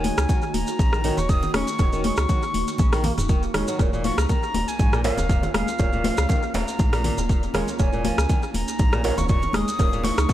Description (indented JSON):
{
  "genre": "afro house",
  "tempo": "120 BPM",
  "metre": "4/4",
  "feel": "swing 55% on 16ths",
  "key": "unclear",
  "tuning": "A4 = 439 Hz",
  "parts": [
    { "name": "breathy bright concert flute", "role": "melody", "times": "0.0-10.3 s", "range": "F5 to Eb6", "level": "-29 LUFS", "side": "left 1 dB", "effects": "dub echo" },
    { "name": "ethereal airy pad", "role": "sustained chords", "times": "0.0-10.3 s", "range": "Eb3 to Gb4", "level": "-33 LUFS", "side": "right 1 dB", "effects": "ensemble chorus, built-in reverb, sidechain pumping" },
    { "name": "flamenco guitar", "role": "arpeggios", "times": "0.0-10.3 s", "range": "Ab2 to Db4", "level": "-30 LUFS", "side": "equal", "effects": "vintage 12-bit sampler grit, sidechain pumping, dub echo" },
    { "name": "deep mellow chord stab", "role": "stabs", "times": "0.0-10.3 s", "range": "Eb4 to Db5", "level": "-32 LUFS", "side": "right 4 dB", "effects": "chorus, sidechain pumping, analog delay" },
    { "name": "round analog bass", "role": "bass", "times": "0.0-10.3 s", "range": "Eb1 to Db2", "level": "-26 LUFS", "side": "equal", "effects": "sidechain pumping" },
    { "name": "deep house drum kit", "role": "drums", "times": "0.0-10.3 s", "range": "hi-hat, rim click, toms", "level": "-29 LUFS", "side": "equal", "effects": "analog delay" },
    { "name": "congas", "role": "percussion", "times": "0.0-10.3 s", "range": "none", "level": "-30 LUFS", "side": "left 4 dB", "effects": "analog delay" },
    { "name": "maracas", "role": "percussion", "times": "0.2-10.3 s", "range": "none", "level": "-37 LUFS", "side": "right 2 dB", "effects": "none" },
    { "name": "electronic kick drum", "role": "drums", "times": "0.3-10.3 s", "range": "none", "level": "-21 LUFS", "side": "equal", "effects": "none" },
    { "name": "djembe", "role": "percussion", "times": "4.2-10.3 s", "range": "none", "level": "-33 LUFS", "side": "right 2 dB", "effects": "analog delay" }
  ],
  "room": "light reverb, small room ambience",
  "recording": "echo-heavy mix",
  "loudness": "-20 LUFS",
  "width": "side -13 dB against mid",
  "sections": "0.0-10.3 A section",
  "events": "none",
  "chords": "0.0 Ebm7; 3.8 Bbm/Eb"
}